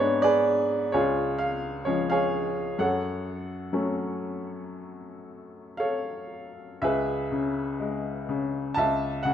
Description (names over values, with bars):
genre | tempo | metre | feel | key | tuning
classical, lyrical solo piano | 56-66 BPM | 4/4 | rubato | F# harmonic minor | A4 = 438 Hz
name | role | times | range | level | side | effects
bright upright piano | solo | 0.0-9.3 s | C#2 to A5 | -25 LUFS | equal | none
room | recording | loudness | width
moderate recital hall reverb, RT60 1.6 s | minimal, uncompressed stereo recording | -25 LUFS | side -9 dB against mid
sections
0.0-6.8 A section; 6.8-9.3 B section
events
none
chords
0.0 G#dim; 0.9 C#; 2.8 F#m; 6.8 C#m7; 8.8 C#m